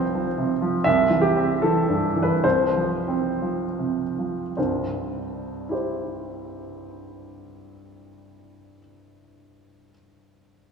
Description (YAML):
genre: classical, romantic character piece for solo piano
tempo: 49-84 BPM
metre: 2/4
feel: rubato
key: C major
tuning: A4 = 440 Hz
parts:
  - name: warm baby grand piano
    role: solo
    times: 0.0-10.7 s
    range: C2 to E5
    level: -22 LUFS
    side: right 1 dB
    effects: none
room: wet church reverb, RT60 3.2 s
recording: recorded in a church or concert hall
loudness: -21 LUFS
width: side -6 dB against mid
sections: 0.0-4.6 A section; 4.6-9.0 B section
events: slowing down 0.1-4.6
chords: 0.0 F5/C; 0.9 C; 2.4 F5/C; 4.6 C